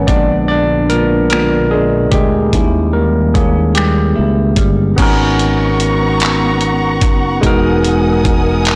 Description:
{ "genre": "slow six-eight R&B", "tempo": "49 BPM (dotted quarters)", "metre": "6/8", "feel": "straight", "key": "G# minor", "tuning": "A4 = 444 Hz", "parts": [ { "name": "semi-hollow electric guitar", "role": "second line", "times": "0.0-5.6 s", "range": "A#2 to A#4", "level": "-25 LUFS", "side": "equal", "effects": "analog chorus" }, { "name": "barky tine electric piano", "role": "accompaniment", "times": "0.0-8.8 s", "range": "A#2 to D5", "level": "-17 LUFS", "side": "equal", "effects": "phaser" }, { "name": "fretless electric bass", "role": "bass", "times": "0.0-8.8 s", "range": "E1 to D#2", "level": "-18 LUFS", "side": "equal", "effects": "lush chorus" }, { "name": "dusty soul sampler-style drum kit", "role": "drums", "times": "0.1-8.8 s", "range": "crash cymbal, finger snaps, handclaps, hi-hat, kick drum", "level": "-18 LUFS", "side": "equal", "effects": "soft clipping on snare" }, { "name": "warm studio string section", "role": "sustained chords", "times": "5.0-8.8 s", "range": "B3 to D#6", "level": "-21 LUFS", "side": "equal", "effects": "none" } ], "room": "light reverb, digital ambience", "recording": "blown-out, overdriven recording, overdrive", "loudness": "-13 LUFS", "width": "mono", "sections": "0.0-5.0 A section; 5.0-8.8 B section", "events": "tine electric piano solo 0.0-5.0", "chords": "0.1 A#7b9; 2.5 D#7b9; 5.0 G#m11; 7.4 Emaj9#11" }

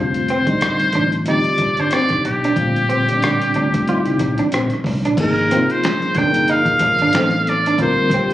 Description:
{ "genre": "R&B, neo-soul", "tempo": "92 BPM", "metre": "4/4", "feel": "swing 57% on 16ths", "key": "unclear", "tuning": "A4 = 440 Hz", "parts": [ { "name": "trumpet with metal mute", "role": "melody", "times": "0.0-8.3 s", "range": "G4 to G5", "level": "-18 LUFS", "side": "equal", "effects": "tape echo" }, { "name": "FM electric piano with tremolo", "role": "accompaniment", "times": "0.0-8.3 s", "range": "A2 to Bb4", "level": "-20 LUFS", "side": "left 1 dB", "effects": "phaser" }, { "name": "vintage muted fingered electric bass", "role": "bass", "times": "0.0-8.2 s", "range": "F1 to D2", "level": "-25 LUFS", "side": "equal", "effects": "none" }, { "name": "dusty soul sampler-style drum kit", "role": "drums", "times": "0.1-8.3 s", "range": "crash cymbal, finger snaps, hi-hat, kick drum, rim click, snare drum", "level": "-24 LUFS", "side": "equal", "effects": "none" }, { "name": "electric guitar through a small old amp", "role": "second line", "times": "0.3-8.3 s", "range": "C4 to F4", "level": "-22 LUFS", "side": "right 2 dB", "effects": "none" } ], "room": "light reverb, digital ambience", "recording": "recorded on a phone in the room, club reverb, compression", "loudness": "-15 LUFS", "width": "side -14 dB against mid", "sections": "0.0-5.2 A section; 5.2-8.3 B section", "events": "none", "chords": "0.0 F13; 2.6 Bb69; 5.2 Abmaj13; 7.1 Adim7; 7.8 Bbadd9" }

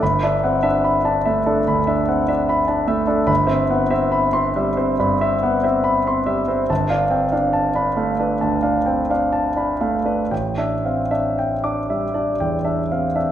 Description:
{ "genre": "classical, impressionist solo piano", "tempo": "57-76 BPM", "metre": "4/4", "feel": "rubato", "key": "unclear", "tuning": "A4 = 441 Hz", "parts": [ { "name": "clear concert grand piano", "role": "solo", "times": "0.0-13.3 s", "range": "G1 to D6", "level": "-17 LUFS", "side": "equal", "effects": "none" } ], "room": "wet scoring stage reverb, RT60 1.7 s", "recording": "minimal, uncompressed stereo recording", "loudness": "-17 LUFS", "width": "side -10 dB against mid", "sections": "0.0-13.3 A section", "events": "none", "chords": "0.0 G69; 3.3 Cmaj7/G; 6.7 G9; 10.3 A7sus4" }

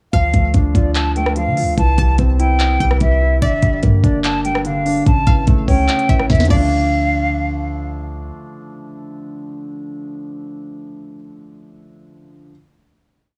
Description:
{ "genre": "hip hop, trap", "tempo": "146 BPM", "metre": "4/4", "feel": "half-time", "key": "D minor", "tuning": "A4 = 435 Hz", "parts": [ { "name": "hollow silver concert flute", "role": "melody", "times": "0.1-7.9 s", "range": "D5 to A5", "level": "-23 LUFS", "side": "equal", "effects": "none" }, { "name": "string-like resonator pluck", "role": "second line", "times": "0.1-7.9 s", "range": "D5 to A5", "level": "-32 LUFS", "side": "equal", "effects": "chorus, tape echo" }, { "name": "dark baby grand piano", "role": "accompaniment", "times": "0.1-12.5 s", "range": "C#3 to F4", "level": "-25 LUFS", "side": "equal", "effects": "none" }, { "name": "clean 808-style bass", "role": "bass", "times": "0.1-8.3 s", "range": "G1 to D3", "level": "-20 LUFS", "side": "equal", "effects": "none" }, { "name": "trap drum kit", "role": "drums", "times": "0.1-6.6 s", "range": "crash cymbal, handclaps, hi-hat, kick drum, rim click, snare drum", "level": "-20 LUFS", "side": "equal", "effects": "overdrive" } ], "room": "little or no reverb", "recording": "none", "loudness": "-16 LUFS", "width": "mono", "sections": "0.1-6.7 hook; 6.7-10.0 final hit", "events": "drum fill 6.3-6.7", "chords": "0.1 Dm; 1.8 C; 3.4 Gm; 5.1 A; 6.5 Dm" }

